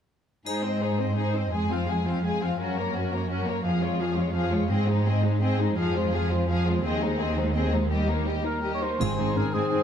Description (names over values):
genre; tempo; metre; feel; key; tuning
cinematic, heroic adventure film score; 112 BPM (dotted quarters); 12/8; straight; Ab major; A4 = 440 Hz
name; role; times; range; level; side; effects
dark symphonic violin section; melody; 0.5-9.8 s; Bb4 to Ab5; -33 LUFS; left 4 dB; none
rich studio violin section; second line; 0.5-9.8 s; C4 to C5; -32 LUFS; left 5 dB; none
rich studio viola section; accompaniment; 0.5-9.8 s; F3 to Ab4; -30 LUFS; equal; none
warm symphonic cello section; bass; 0.5-9.8 s; Eb2 to Ab2; -26 LUFS; right 1 dB; none
triangle; percussion; 0.5-1.1, 9.0-9.7 s; none; -40 LUFS; left 2 dB; none
mellow cor anglais; second line; 8.5-9.8 s; Ab4 to Db5; -30 LUFS; right 2 dB; none
concert harp; arpeggios; 9.0-9.8 s; Ab2 to C5; -29 LUFS; left 4 dB; none
rich symphonic double bass section; bass; 9.0-9.2 s; Ab1; -32 LUFS; right 5 dB; none
timpani; percussion; 9.0-9.5 s; Ab2; -33 LUFS; left 1 dB; none
room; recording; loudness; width
moderate scoring stage reverb, RT60 2.0 s; dark, warm production; -23 LUFS; side -8 dB against mid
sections
0.5-9.0 A section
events
none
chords
0.5 Ab; 1.5 Fm; 2.6 Gb; 3.6 Db/F; 4.7 Ab; 5.8 Fm; 6.8 Ab/Eb; 7.9 Eb; 9.0 Ab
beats
| 0.46 0.99 1.53 2.06 | 2.60 3.12 3.65 4.18 | 4.71 5.24 5.77 6.31 | 6.84 7.37 7.91 8.45 | 9.00 9.54